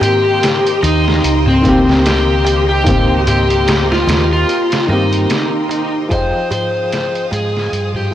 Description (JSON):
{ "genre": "trip hop", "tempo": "74 BPM", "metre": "4/4", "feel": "swing 57% on 16ths", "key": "C phrygian", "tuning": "A4 = 440 Hz", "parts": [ { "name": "overdriven slide guitar", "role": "melody", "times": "0.0-8.1 s", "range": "C4 to C5", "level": "-15 LUFS", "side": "left 1 dB", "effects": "dub echo" }, { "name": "felt-muted upright piano", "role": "accompaniment", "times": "0.0-8.1 s", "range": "Eb3 to G5", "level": "-20 LUFS", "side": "equal", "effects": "tremolo, tape echo" }, { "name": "bright studio violin section", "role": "sustained chords", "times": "0.0-8.1 s", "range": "C4 to Eb6", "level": "-24 LUFS", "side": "equal", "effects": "none" }, { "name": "trip hop sampler-style drum kit", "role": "drums", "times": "0.0-7.9 s", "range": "hi-hat, kick drum, snare drum", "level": "-19 LUFS", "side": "equal", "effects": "none" }, { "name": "darbuka", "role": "percussion", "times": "0.0-8.1 s", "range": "none", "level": "-22 LUFS", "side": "equal", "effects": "none" }, { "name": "fingered electric bass", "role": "bass", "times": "0.8-8.1 s", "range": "Db2 to Ab2", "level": "-17 LUFS", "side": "equal", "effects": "none" } ], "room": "light reverb, small room ambience", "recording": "blown-out, overdriven recording, vinyl crackle, overdrive", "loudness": "-11 LUFS", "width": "side -11 dB against mid", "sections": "0.0-8.1 A section", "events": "fade-out 3.9-8.1", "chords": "0.0 Cm7; 6.1 Fm9" }